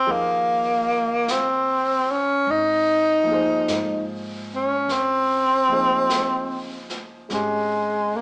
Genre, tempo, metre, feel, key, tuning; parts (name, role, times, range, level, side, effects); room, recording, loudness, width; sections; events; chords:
jazz ballad; 50 BPM; 4/4; swing 68% on 8ths; A4 = 443 Hz
breathy tenor saxophone; melody; 0.0-8.2 s; Ab3 to Eb4; -19 LUFS; equal
warm grand piano; accompaniment; 0.0-8.2 s; F3 to Eb5; -31 LUFS; equal
upright bass; bass; 0.0-8.2 s; Ab1 to Ab2; -39 LUFS; equal
jazz brush drum kit; drums; 0.1-8.2 s; brushed snare drum, hi-hat, snare drum; -33 LUFS; equal
moderate studio reverb, RT60 0.9 s; band playing live in one room, small speaker sound; -19 LUFS; side -28 dB against mid
0.0-8.2 A section
0.1 Eb5; 2.5 Abadd9; 4.9 Dbmaj9